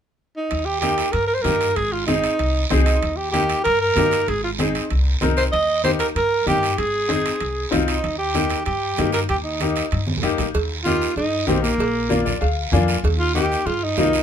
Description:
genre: latin, cumbia.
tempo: 192 BPM.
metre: 4/4.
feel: straight.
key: Eb major.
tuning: A4 = 440 Hz.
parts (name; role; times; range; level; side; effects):
breathy alto saxophone; melody; 0.4-14.2 s; Bb3 to Eb5; -21 LUFS; right 2 dB; none.
upright bass; bass; 0.5-14.2 s; Ab1 to G2; -24 LUFS; equal; none.
congas; percussion; 0.5-14.1 s; none; -28 LUFS; right 1 dB; none.
guiro; percussion; 0.5-14.2 s; none; -30 LUFS; right 5 dB; none.
timbales and cowbell; percussion; 0.5-14.1 s; none; -30 LUFS; right 5 dB; none.
clear upright piano; accompaniment; 0.8-14.2 s; Bb3 to Ab5; -24 LUFS; left 6 dB; none.
room: moderate studio reverb, RT60 0.6 s.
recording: minimal, uncompressed stereo recording.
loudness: -18 LUFS.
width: side -8 dB against mid.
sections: 0.5-10.5 A section; 10.5-14.2 B section.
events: drum fill 10.1-10.5; alto saxophone solo 10.5-14.2; upright piano fill 12.1-13.0.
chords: 0.0 N.C.; 0.5 Eb; 1.8 Ab; 3.0 Eb; 4.3 Ab; 5.5 Eb; 6.8 Ab; 8.0 Eb; 11.8 Bb7; 13.0 Eb.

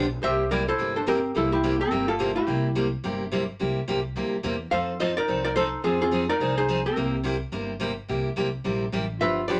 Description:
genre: country, western swing.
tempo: 214 BPM.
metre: 4/4.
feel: swing 59% on 8ths.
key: C mixolydian.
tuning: A4 = 441 Hz.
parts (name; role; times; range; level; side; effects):
picked steel-string acoustic guitar; accompaniment; 0.0-9.6 s; C3 to A4; -30 LUFS; equal; none.
upright bass; bass; 0.0-9.6 s; G1 to F2; -34 LUFS; equal; none.
archtop guitar, miked and amplified; melody; 0.2-9.6 s; E4 to F5; -28 LUFS; equal; none.
breathy clarinet; second line; 0.2-9.6 s; Bb3 to A4; -33 LUFS; equal; none.
room: moderate studio ambience, RT60 0.4 s.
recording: none.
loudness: -26 LUFS.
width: mono.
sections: 0.2-9.6 A section.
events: none.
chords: 0.2 C7; 4.7 F7; 5.8 Fm7; 7.0 C7.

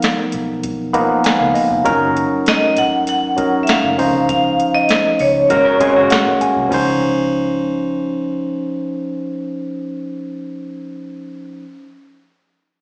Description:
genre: lush 1970s-style soul.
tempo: 99 BPM.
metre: 4/4.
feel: straight.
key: Db major.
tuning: A4 = 440 Hz.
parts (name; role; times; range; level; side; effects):
barky tine electric piano; accompaniment; 0.0-11.7 s; Eb3 to Cb6; -20 LUFS; equal; overdrive.
soft vintage rhythm box; drums; 0.0-6.9 s; crash cymbal, hi-hat, kick drum, snare drum; -23 LUFS; equal; slapback echo.
vintage muted fingered electric bass; bass; 0.3-10.6 s; F1 to Db2; -32 LUFS; equal; none.
vibraphone with hard mallets; melody; 2.5-6.1 s; Db5 to Gb5; -18 LUFS; equal; slapback echo.
electric guitar through a small old amp; riff; 5.5-6.7 s; Bb3 to Bb4; -24 LUFS; equal; slapback echo.
room: light reverb.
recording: live gig heard through the venue's PA, recital hall reverb, small speaker sound.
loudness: -16 LUFS.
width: mono.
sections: 0.0-6.7 A section; 6.7-9.1 B section.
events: tine electric piano fill 0.6-1.9, 5.8-6.7.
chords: 0.0 Db13 (rootless); 1.9 Gb6; 4.0 Dbmaj9; 5.5 Ab9sus4; 6.7 Dbmaj9.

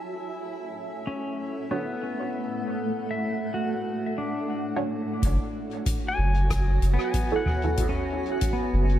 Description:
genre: ambient dub.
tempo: 94 BPM.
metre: 4/4.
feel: swing 56% on 16ths.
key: F# minor.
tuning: A4 = 439 Hz.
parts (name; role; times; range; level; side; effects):
granular cloud pad; sustained chords; 0.0-9.0 s; A3 to A5; -31 LUFS; right 2 dB; built-in reverb.
bubbling stepped-filter texture; texture; 0.0-5.2 s; E4 to E5; -41 LUFS; right 1 dB; chorus, built-in reverb.
pedal steel guitar; arpeggios; 1.1-9.0 s; B3 to G#5; -31 LUFS; left 3 dB; analog delay.
filtered dub chord stab; stabs; 1.7-7.8 s; D4 to C#5; -31 LUFS; right 3 dB; phaser, lush chorus, dub echo.
soft dub sub bass; bass; 5.2-9.0 s; F#1; -21 LUFS; equal; none.
electronic kick drum; drums; 5.2-8.6 s; none; -28 LUFS; equal; none.
soft-mallet drum kit; drums; 5.2-8.6 s; hi-hat, rim click, toms; -32 LUFS; equal; low-pass filter on hats, low-pass filter on toms, low-pass filter on snare, low-pass filter on room, dub echo.
room: light reverb, studio reverb.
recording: echo-heavy mix.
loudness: -25 LUFS.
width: side -12 dB against mid.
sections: 0.0-5.2 A section; 5.2-9.0 B section.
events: none.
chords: 0.1 Dmaj7; 5.2 F#m7.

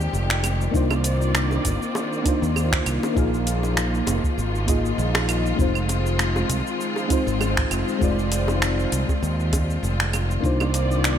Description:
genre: sunset chillout.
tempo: 99 BPM.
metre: 4/4.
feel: swing 55% on 16ths.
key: F dorian.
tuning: A4 = 442 Hz.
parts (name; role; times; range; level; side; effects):
mellow FM electric piano; accompaniment; 0.0-11.2 s; Ab3 to F5; -26 LUFS; left 1 dB; chorus, auto-pan, ping-pong delay.
warm studio string section; sustained chords; 0.0-11.2 s; Eb3 to D5; -29 LUFS; left 1 dB; none.
modern bright fingered electric bass; bass; 0.0-11.2 s; F1 to Eb2; -24 LUFS; right 1 dB; none.
deep house drum kit; drums; 0.0-11.2 s; cabasa, claves, finger snaps, hi-hat; -27 LUFS; right 1 dB; studio reverb.
bongos; percussion; 0.4-10.7 s; none; -34 LUFS; equal; none.
electronic kick drum; drums; 0.7-10.6 s; none; -24 LUFS; right 1 dB; studio reverb.
room: light reverb, digital ambience.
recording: bright 1980s-style digital production.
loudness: -20 LUFS.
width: side -9 dB against mid.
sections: 0.0-11.2 A section.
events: none.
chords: 0.0 Fm7; 0.7 Cm11; 3.2 Bb7sus4; 5.6 Fm7; 10.4 Cm11.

